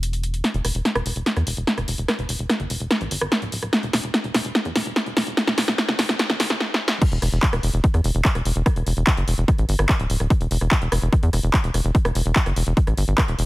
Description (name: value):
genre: psychedelic trance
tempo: 146 BPM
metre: 4/4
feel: straight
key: E minor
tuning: A4 = 441 Hz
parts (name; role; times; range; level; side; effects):
- tight sequencer bass; bass; 0.0-13.5 s; D1 to E2; -22 LUFS; equal; none
- techno drum kit; drums; 0.0-13.5 s; crash cymbal, handclaps, hi-hat, rim click, snare drum; -22 LUFS; equal; overdrive
- electronic kick drum; drums; 7.0-13.3 s; none; -19 LUFS; equal; overdrive
room: light reverb, digital ambience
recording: high-pass filter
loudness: -19 LUFS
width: side -19 dB against mid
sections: 0.4-7.0 A section; 7.0-13.5 B section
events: build-up 0.4-7.0; drum fill 0.4-6.6, 6.6-7.0; filter sweep 0.4-7.0; drop 7.0-13.5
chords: none